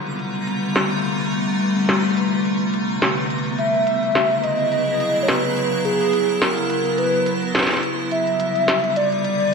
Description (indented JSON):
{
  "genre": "IDM",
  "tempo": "106 BPM",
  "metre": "4/4",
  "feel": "swing 56% on 16ths",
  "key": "unclear",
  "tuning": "A4 = 439 Hz",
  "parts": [
    { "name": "icy glass pad", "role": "sustained chords", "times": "0.0-9.5 s", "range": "B#2 to G#4", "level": "-22 LUFS", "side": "left 1 dB", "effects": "chorus, built-in reverb" },
    { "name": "twinkling granular texture", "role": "texture", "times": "0.0-9.5 s", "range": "B3 to A#5", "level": "-30 LUFS", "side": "right 1 dB", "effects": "built-in reverb, lush chorus" },
    { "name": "industrial drum kit", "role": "drums", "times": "0.1-9.5 s", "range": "hi-hat, snare drum", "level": "-23 LUFS", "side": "equal", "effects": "low-pass filter on hats, low-pass filter on snare, low-pass filter on perc, low-pass filter on toms" },
    { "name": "warbly nostalgic lead", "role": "melody", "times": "3.6-9.5 s", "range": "G#4 to E5", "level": "-20 LUFS", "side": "equal", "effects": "chorus, vintage 12-bit sampler grit, digital delay" }
  ],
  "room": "wet plate reverb, RT60 2.2 s",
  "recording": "bright 1980s-style digital production",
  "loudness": "-18 LUFS",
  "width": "side -5 dB against mid",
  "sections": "0.0-9.5 A section",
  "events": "none",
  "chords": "0.0 Gm9; 3.6 C#m7; 8.1 Gm9"
}